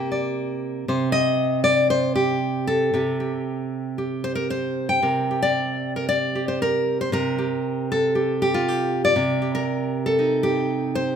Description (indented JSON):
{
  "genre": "folk, solo fingerstyle acoustic guitar",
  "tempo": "117 BPM",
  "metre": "4/4",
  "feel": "rubato",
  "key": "C dorian",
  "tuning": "A4 = 441 Hz",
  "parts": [
    { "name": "nylon-string guitar", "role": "solo", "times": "0.0-11.2 s", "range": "C3 to G5", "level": "-20 LUFS", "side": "equal", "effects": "none" }
  ],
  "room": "moderate recital hall reverb, RT60 1.6 s",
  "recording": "minimal, uncompressed stereo recording",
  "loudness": "-20 LUFS",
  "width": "side -8 dB against mid",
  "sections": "0.0-11.2 A section",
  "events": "none",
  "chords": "0.0 Gmadd9/C; 0.9 Cm; 5.0 Gmadd9/C; 9.2 Cmadd9"
}